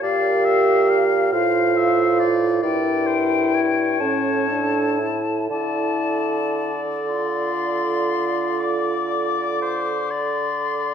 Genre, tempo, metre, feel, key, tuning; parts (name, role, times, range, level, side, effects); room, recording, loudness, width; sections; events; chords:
classical, slow romantic movement for wind quintet; 38-47 BPM (dotted quarters); 12/8; rubato; D minor; A4 = 437 Hz
silver concert flute; melody; 0.0-10.9 s; F5 to D6; -25 LUFS; left 7 dB
warm oboe; second line; 0.0-10.9 s; C5 to F5; -27 LUFS; left 4 dB
mellow clarinet; accompaniment; 0.0-10.9 s; A4 to C5; -30 LUFS; right 7 dB
warm French horn; accompaniment; 0.0-10.1 s; C#4 to G4; -22 LUFS; right 2 dB
mellow bassoon; bass; 0.0-10.9 s; G2 to D3; -26 LUFS; right 3 dB
moderate recital hall reverb, RT60 1.4 s; dark, warm production; -18 LUFS; side -8 dB against mid
0.0-10.9 A section
0.0 Bbmaj7; 2.6 Em7b5/G; 4.0 A; 5.5 Dm